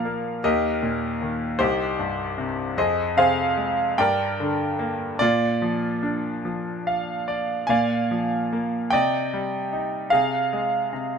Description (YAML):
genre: classical, lyrical solo piano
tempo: 48-52 BPM (dotted quarters)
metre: 6/8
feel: rubato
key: F dorian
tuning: A4 = 440 Hz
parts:
  - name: bright concert grand piano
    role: solo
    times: 0.0-11.2 s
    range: C2 to Ab5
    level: -21 LUFS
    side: equal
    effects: none
room: light reverb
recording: minimal, uncompressed stereo recording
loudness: -21 LUFS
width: side -6 dB against mid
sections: 0.0-11.2 A section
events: grand piano fill 6.4-7.7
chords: 0.4 Eb; 1.6 Cm; 2.8 Fm; 4.0 Gm; 5.2 Bb; 8.9 Cmadd9; 10.1 Fm/C